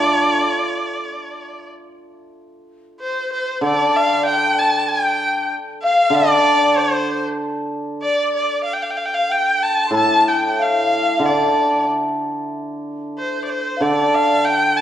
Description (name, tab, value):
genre	chinese traditional, Chinese chamber ensemble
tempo	94 BPM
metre	4/4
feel	rubato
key	D yu mode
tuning	A4 = 438 Hz
part	clear erhu	melody	0.0-14.8 s	C5 to A5	-19 LUFS	equal	none
part	hammered dulcimer	accompaniment	0.0-14.8 s	A2 to A4	-20 LUFS	equal	none
part	mellow hollow large dizi	second line	3.0-14.8 s	C5 to C6	-21 LUFS	left 2 dB	none
room	wet recital hall reverb, RT60 1.4 s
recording	dark, warm production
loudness	-16 LUFS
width	side -10 dB against mid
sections	0.0-2.4 A section; 2.4-14.8 B section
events	none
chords	none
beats	0.40 1.04 1.70 | 2.35 2.99 3.63 4.26 | 4.88 5.51 6.13 6.76 | 7.39 8.02 8.65 9.29 | 9.94 10.58 11.22 11.87 | 12.52 13.17 13.81 14.46